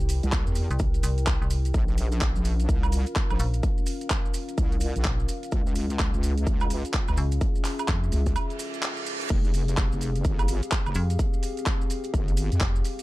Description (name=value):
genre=bass house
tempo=127 BPM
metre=4/4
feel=swing 61% on 16ths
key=F harmonic minor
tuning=A4 = 442 Hz
part: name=dark analog pad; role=sustained chords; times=0.0-13.0 s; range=C4 to G5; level=-35 LUFS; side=left 2 dB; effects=chorus, sidechain pumping
part: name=metallic FM bass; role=bass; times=0.0-8.1, 11.0-12.8 s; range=F1 to F2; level=-25 LUFS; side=equal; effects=tube saturation, sidechain pumping
part: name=maracas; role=percussion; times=0.0-13.0 s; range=none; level=-42 LUFS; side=right 3 dB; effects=none
part: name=house drum kit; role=drums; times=0.1-13.0 s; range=crash cymbal, handclaps, hi-hat, woodblock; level=-33 LUFS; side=right 2 dB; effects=none
part: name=wobble bass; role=bass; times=0.2-12.6 s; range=F1 to F2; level=-26 LUFS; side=equal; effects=chorus, overdrive, sidechain pumping
part: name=electronic kick drum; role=drums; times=0.3-12.7 s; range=none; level=-26 LUFS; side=equal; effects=none
part: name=reverse cymbal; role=sound effects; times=8.5-9.3 s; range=none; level=-33 LUFS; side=right 5 dB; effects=none
room=little or no reverb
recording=dark, warm production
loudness=-23 LUFS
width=side -18 dB against mid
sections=0.0-13.0 A section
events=break 8.4-9.3; reverse cymbal 8.5-9.3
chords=0.0 C; 1.7 Bbm; 5.5 Db; 9.3 Fmadd9